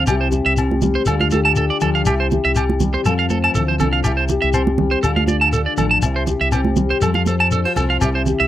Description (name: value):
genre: highlife guitar band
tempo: 121 BPM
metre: 4/4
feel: swing 53% on 16ths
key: C major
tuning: A4 = 444 Hz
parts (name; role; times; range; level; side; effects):
- fingerpicked steel-string acoustic guitar; accompaniment; 0.0-8.5 s; C3 to C5; -21 LUFS; left 5 dB; none
- electric guitar at the edge of break-up; arpeggios; 0.0-8.5 s; G4 to A5; -19 LUFS; right 4 dB; wide subtle chorus, slapback echo
- fingered electric bass; bass; 0.0-8.5 s; A1 to F2; -20 LUFS; equal; none
- agogo bells; percussion; 0.1-8.1 s; none; -28 LUFS; left 7 dB; none
- shekere; percussion; 0.1-8.4 s; none; -22 LUFS; left 2 dB; none
- congas; percussion; 0.3-8.4 s; none; -22 LUFS; right 4 dB; none
room: little or no reverb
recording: dry, close 1970s-style studio recording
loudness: -15 LUFS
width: side -12 dB against mid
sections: 0.0-8.5 A section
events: none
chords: 0.1 C; 1.1 Dm; 2.1 C; 3.1 F; 4.0 C; 5.0 Dm; 6.0 C; 7.0 F